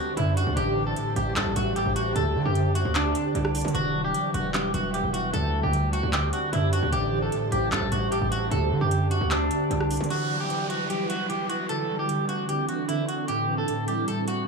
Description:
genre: hip hop, trap.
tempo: 151 BPM.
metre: 4/4.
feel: half-time.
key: unclear.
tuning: A4 = 441 Hz.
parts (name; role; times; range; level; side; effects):
electric guitar at the edge of break-up; melody; 0.0-14.4 s; D4 to A4; -28 LUFS; equal; wide subtle chorus, low-pass filter, dub echo.
concert harp; accompaniment; 0.0-14.5 s; A2 to G4; -30 LUFS; left 1 dB; low-pass filter, dub echo.
ethereal airy pad; sustained chords; 0.0-14.5 s; E3 to A5; -32 LUFS; right 2 dB; ensemble chorus, built-in reverb.
distorted 808-style bass; bass; 0.2-10.1 s; E1 to D3; -27 LUFS; right 1 dB; distortion.
trap drum kit; drums; 0.2-14.4 s; handclaps, hi-hat, rim click; -33 LUFS; right 1 dB; overdrive, dub echo.
downlifter; sound effects; 10.1-13.3 s; none; -38 LUFS; right 3 dB; none.
room: digital ambience.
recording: echo-heavy mix, studio ambience.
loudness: -23 LUFS.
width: side -4 dB against mid.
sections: 0.0-10.1 A section; 10.1-14.5 B section.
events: none.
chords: 0.0 D7sus4; 0.6 Am7; 2.2 D7sus4; 3.7 Emadd9; 5.3 D7sus4; 6.9 Am7; 8.5 D7sus4; 10.1 Emadd9; 11.7 D7sus4; 13.3 Am7.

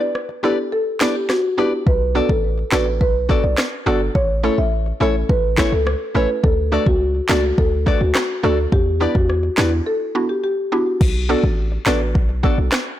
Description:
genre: dancehall.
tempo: 105 BPM.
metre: 4/4.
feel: straight.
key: B minor.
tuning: A4 = 440 Hz.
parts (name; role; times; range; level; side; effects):
marimba with soft mallets; melody; 0.0-10.8 s; E4 to E5; -22 LUFS; equal; tape echo.
afro-pop drum kit; drums; 0.2-12.9 s; crash cymbal, handclaps, kick drum, rim click, snare drum; -19 LUFS; equal; none.
nylon-string guitar; arpeggios; 0.3-12.6 s; E4 to D5; -25 LUFS; left 6 dB; none.
mallet-like synth pluck; accompaniment; 0.4-12.6 s; A3 to B4; -23 LUFS; right 3 dB; chorus, sidechain pumping.
hard-hitting 808-style bass; bass; 1.9-12.7 s; G1 to E2; -21 LUFS; equal; none.
room: digital ambience.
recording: blown-out, overdriven recording, overdrive.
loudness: -16 LUFS.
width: side -12 dB against mid.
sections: 0.0-11.0 A section; 11.0-13.0 B section.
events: break 0.0-1.9, 9.9-11.0.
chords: 0.0 Em7; 1.9 Bm7; 4.2 A; 6.4 D; 8.7 Em7; 11.0 Bm7.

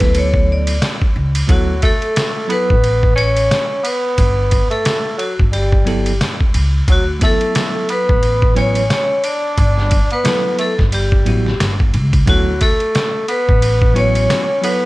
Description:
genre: hip hop, jazz-hop.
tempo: 89 BPM.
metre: 4/4.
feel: swing 58% on 16ths.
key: D major.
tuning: A4 = 440 Hz.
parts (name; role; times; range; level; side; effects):
vibraphone with hard mallets; melody; 0.0-14.9 s; F#4 to D5; -18 LUFS; left 1 dB; none.
bell-like tine electric piano; accompaniment; 0.0-14.9 s; F#3 to B4; -22 LUFS; right 2 dB; medium stereo tremolo.
upright bass; bass; 0.0-14.3 s; G1 to D2; -17 LUFS; equal; none.
trip hop sampler-style drum kit; drums; 0.0-14.8 s; hi-hat, kick drum, ride cymbal, snare drum; -17 LUFS; equal; none.
mellow tenor saxophone; second line; 1.5-14.9 s; F#3 to D4; -23 LUFS; right 2 dB; none.
room: small room ambience.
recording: none.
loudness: -13 LUFS.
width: side -19 dB against mid.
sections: 0.0-1.5 A section; 1.5-14.9 B section.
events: vibraphone solo 0.0-1.5.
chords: 0.0 Dmaj9; 4.2 Gadd9; 6.9 Dadd9; 9.6 Gmaj9; 12.3 Dmaj9.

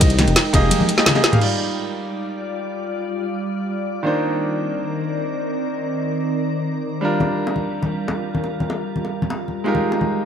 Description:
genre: liquid drum and bass.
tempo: 171 BPM.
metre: 4/4.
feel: straight.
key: Eb major.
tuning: A4 = 440 Hz.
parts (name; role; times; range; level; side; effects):
breathy jazz flute; melody; 0.0-1.1 s; Eb5; -34 LUFS; right 2 dB; none.
glassy FM pad; sustained chords; 0.0-10.3 s; Eb3 to G5; -24 LUFS; equal; ensemble chorus, built-in reverb, sidechain pumping.
smooth synth bass; bass; 0.0-0.7 s; F1 to C2; -19 LUFS; equal; none.
drum and bass drum kit; drums; 0.0-1.5 s; crash cymbal, hi-hat, ride cymbal, snare drum, toms; -18 LUFS; equal; none.
electronic kick drum; drums; 0.0-0.6 s; none; -15 LUFS; equal; none.
congas and bongos; percussion; 0.2-1.4, 7.2-10.1 s; none; -25 LUFS; left 2 dB; none.
clear concert grand piano; accompaniment; 0.5-10.3 s; Eb3 to F5; -24 LUFS; right 1 dB; digital delay.
room: moderate plate reverb, RT60 1.8 s, digital ambience.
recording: none.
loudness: -19 LUFS.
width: side -8 dB against mid.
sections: 0.0-1.4 A section; 1.4-10.3 B section.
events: drop 0.0-1.4; drum fill 0.7-1.4.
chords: 0.0 Fm11; 1.4 Ebmaj9; 4.0 Cm9/Eb; 7.0 Gm7; 9.7 Fm11.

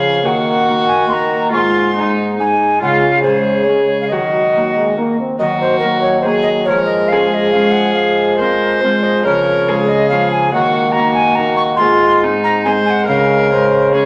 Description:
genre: classical, renaissance-style consort dance.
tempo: 140 BPM.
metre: 3/4.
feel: straight.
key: Eb dorian.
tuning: A4 = 440 Hz.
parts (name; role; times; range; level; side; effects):
alto recorder; melody; 0.0-14.1 s; Bb4 to Db6; -19 LUFS; equal; none.
rich viola; second line; 0.0-14.1 s; Eb4 to C5; -19 LUFS; equal; none.
Celtic harp; accompaniment; 0.0-14.1 s; Ab2 to Ab4; -24 LUFS; equal; none.
clear trombone; accompaniment; 0.0-14.1 s; F3 to C4; -23 LUFS; equal; none.
mellow bassoon; bass; 0.0-14.1 s; Ab2 to F3; -22 LUFS; equal; none.
room: wet stone room reverb, RT60 1.2 s.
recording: none.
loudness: -14 LUFS.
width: mono.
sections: 0.0-5.4 A section; 5.4-14.1 A section.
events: none.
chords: 0.2 Ebm; 1.5 Ab; 2.8 Db; 4.1 Ebm; 6.7 Db/F; 8.0 Fm; 9.2 Db; 10.5 Ebm; 11.8 Ab; 13.1 Db.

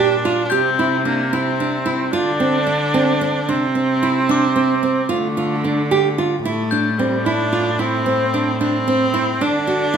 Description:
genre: contemporary instrumental, chamber music in an uneven meter.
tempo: 223 BPM (eighths).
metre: 11/8.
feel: straight.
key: unclear.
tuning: A4 = 441 Hz.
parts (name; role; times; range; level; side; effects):
bright viola; second line; 0.0-10.0 s; G3 to D4; -21 LUFS; right 1 dB; none.
nylon-string guitar; arpeggios; 0.0-10.0 s; C4 to G4; -19 LUFS; right 3 dB; none.
clear cello; bass; 0.0-10.0 s; A2 to D3; -24 LUFS; right 1 dB; none.
glockenspiel with hard plastic mallets; texture; 0.5-7.7 s; D6 to G6; -26 LUFS; left 5 dB; none.
room: wet recital hall reverb, RT60 1.5 s.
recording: minimal, uncompressed stereo recording.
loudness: -16 LUFS.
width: side -7 dB against mid.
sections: 0.0-6.4 A section; 6.4-10.0 B section.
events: none.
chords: 0.0 Bb; 0.5 C; 2.1 Dm7; 3.5 Csus2; 5.1 Dm; 6.4 Am7; 9.4 D.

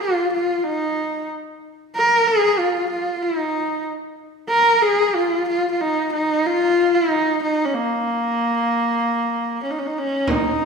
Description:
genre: mongolian traditional, Mongolian folk.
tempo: 94 BPM.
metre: 4/4.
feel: straight.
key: Bb yu mode.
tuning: A4 = 440 Hz.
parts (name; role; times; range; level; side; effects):
clear horsehead fiddle; melody; 0.0-10.7 s; Bb3 to Bb4; -18 LUFS; equal; none.
frame drum; percussion; 10.3-10.7 s; none; -21 LUFS; right 2 dB; none.
room: wet recital hall reverb, RT60 1.6 s.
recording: recorded in a church or concert hall.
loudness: -18 LUFS.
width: side -5 dB against mid.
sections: 0.0-10.3 A section.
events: none.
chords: none.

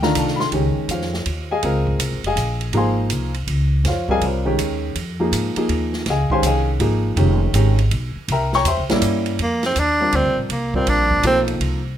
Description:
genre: modal jazz.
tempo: 162 BPM.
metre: 3/4.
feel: swing 65% on 8ths.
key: Db lydian.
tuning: A4 = 440 Hz.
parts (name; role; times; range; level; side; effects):
warm upright piano; accompaniment; 0.0-11.8 s; Eb3 to Db6; -21 LUFS; left 1 dB; none.
upright bass; bass; 0.0-12.0 s; F1 to Ab2; -21 LUFS; equal; none.
open jazz drum kit; drums; 0.0-11.7 s; hi-hat, kick drum, ride cymbal, snare drum; -27 LUFS; right 3 dB; none.
bright tenor saxophone; melody; 9.4-11.4 s; Bb3 to D4; -18 LUFS; right 1 dB; plate reverb.
room: light reverb.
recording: close, detailed microphones.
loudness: -17 LUFS.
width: side -10 dB against mid.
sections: 0.5-9.4 A section; 9.4-12.0 A section.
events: tenor saxophone solo 9.4-12.0.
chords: 0.0 F7sus4; 0.5 Dbmaj9; 8.3 C7b9; 9.4 F9sus4.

